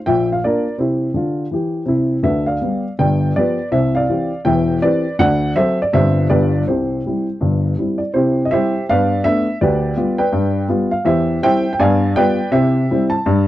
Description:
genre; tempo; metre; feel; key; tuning
jazz, stride piano; 163 BPM; 4/4; swing 60% on 8ths; C major; A4 = 440 Hz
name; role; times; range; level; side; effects
warm upright piano; solo; 0.0-13.5 s; E1 to A5; -14 LUFS; equal; none
room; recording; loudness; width
light reverb; dry, close 1970s-style studio recording; -15 LUFS; side -14 dB against mid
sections
0.0-8.2 A section; 8.2-13.5 B section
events
none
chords
0.1 Bb; 0.8 C; 2.3 G7/D; 3.0 G7; 3.7 C; 4.5 C/E; 5.2 D7; 5.9 C/G; 6.3 G; 6.7 C; 8.9 G9; 9.6 G7/D; 11.1 C/E; 11.8 G7b9; 12.6 C

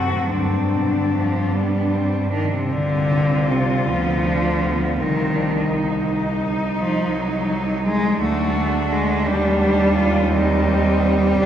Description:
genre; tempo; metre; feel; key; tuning
classical, lyrical piece for cello ensemble; 49-58 BPM (dotted quarters); 6/8; rubato; C minor; A4 = 441 Hz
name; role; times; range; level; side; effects
rich cello; melody; 0.0-11.5 s; D4 to G4; -26 LUFS; left 3 dB; none
warm cello; second line; 0.0-11.5 s; B3 to Eb4; -26 LUFS; right 4 dB; none
rich cello; accompaniment; 0.0-11.5 s; D2 to D4; -20 LUFS; equal; none
rich cello; bass; 0.0-11.5 s; C2 to G2; -23 LUFS; right 1 dB; none
room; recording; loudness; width
wet cathedral reverb, RT60 6.4 s; recorded in a church or concert hall; -17 LUFS; side -10 dB against mid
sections
0.0-2.7 A section; 2.7-11.5 B section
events
none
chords
0.3 G5/D; 2.7 Csus24; 3.9 Dm6; 5.0 Cm; 7.1 Cdim7; 9.3 Cm/Eb

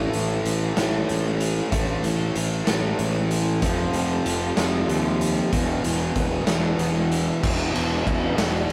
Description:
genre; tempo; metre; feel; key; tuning
quiet-loud alternative rock; 63 BPM (dotted quarters); 6/8; straight; A minor; A4 = 440 Hz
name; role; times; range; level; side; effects
fuzz guitar; riff; 0.0-8.7 s; E2 to A3; -28 LUFS; equal; distortion
fuzz fingered electric bass; bass; 0.0-8.7 s; E1 to D#2; -28 LUFS; equal; overdrive
raw garage drum kit; drums; 0.1-8.7 s; crash cymbal, hi-hat, kick drum, ride cymbal, snare drum; -28 LUFS; equal; none
room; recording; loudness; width
light reverb; rough rehearsal-room recording; -23 LUFS; mono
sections
0.0-7.4 A section; 7.4-8.7 B section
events
none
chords
0.0 A5; 3.6 F5; 5.5 E5

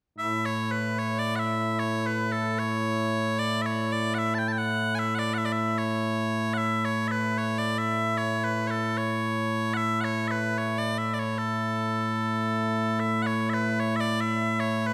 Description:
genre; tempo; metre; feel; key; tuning
scottish traditional, Scottish pipe music; 75 BPM; 2/4; straight; A major; A4 = 444 Hz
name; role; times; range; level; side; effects
loud bright bagpipes; solo; 0.2-14.9 s; A2 to A5; -27 LUFS; equal; none
room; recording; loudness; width
wet recital hall reverb, RT60 1.2 s; dark, warm production; -27 LUFS; mono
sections
0.2-13.0 A section; 13.0-14.9 A section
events
none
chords
none

